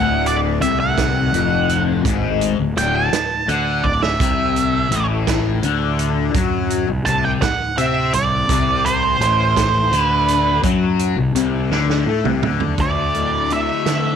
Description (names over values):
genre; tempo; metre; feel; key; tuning
psychedelic rock; 56 BPM (dotted quarters); 6/8; straight; D mixolydian; A4 = 439 Hz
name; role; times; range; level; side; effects
octave-fuzz lead guitar; melody; 0.0-14.2 s; C5 to A5; -19 LUFS; right 4 dB; distortion, slapback echo
fuzz guitar; riff; 0.0-14.2 s; D2 to C4; -20 LUFS; left 10 dB; distortion, phaser
fuzz fingered electric bass; bass; 0.0-14.2 s; D1 to D3; -22 LUFS; right 1 dB; overdrive
deep rumbling drone; drone; 0.0-12.9 s; D2 to A2; -30 LUFS; equal; none
vintage drum kit; drums; 0.3-14.0 s; hi-hat, kick drum, snare drum, toms; -23 LUFS; right 4 dB; none
room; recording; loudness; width
light reverb, small room ambience; 1960s-style stereo; -15 LUFS; side -8 dB against mid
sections
0.0-12.8 A section; 12.8-14.2 B section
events
lead electric guitar solo 0.0-12.8; drum fill 3.8-4.2, 11.7-12.8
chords
0.0 D; 4.2 Amadd11; 12.8 D5